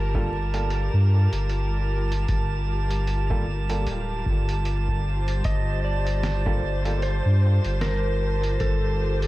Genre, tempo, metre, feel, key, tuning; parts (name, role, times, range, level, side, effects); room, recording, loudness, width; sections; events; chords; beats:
ambient dub; 76 BPM; 4/4; swing 58% on 16ths; G minor; A4 = 440 Hz
rich symphonic string section; sustained chords; 0.0-9.3 s; G3 to C5; -32 LUFS; left 1 dB
warm sub bass; bass; 0.0-9.3 s; D1 to G2; -23 LUFS; equal
drifting glass-harmonics texture; texture; 0.0-9.3 s; A5; -34 LUFS; right 7 dB; chorus, built-in reverb
clear upright piano; stabs; 0.1-7.0 s; G3 to A4; -36 LUFS; right 1 dB; low-pass filter, dub echo
electronic kick drum; drums; 0.1-8.8 s; -30 LUFS; equal
lo-fi sampler-style drum kit; drums; 0.5-9.3 s; hi-hat, snare drum; -37 LUFS; equal; small room ambience, dub echo
clean lap steel guitar; melody; 5.4-9.3 s; A4 to Eb5; -31 LUFS; equal; dub echo
light reverb; vinyl crackle; -22 LUFS; side -18 dB against mid
0.0-9.3 A section
0.0 Gm9
0.71 1.50 | 2.29 3.08 3.87 4.66 | 5.45 6.24 7.02 7.81 | 8.60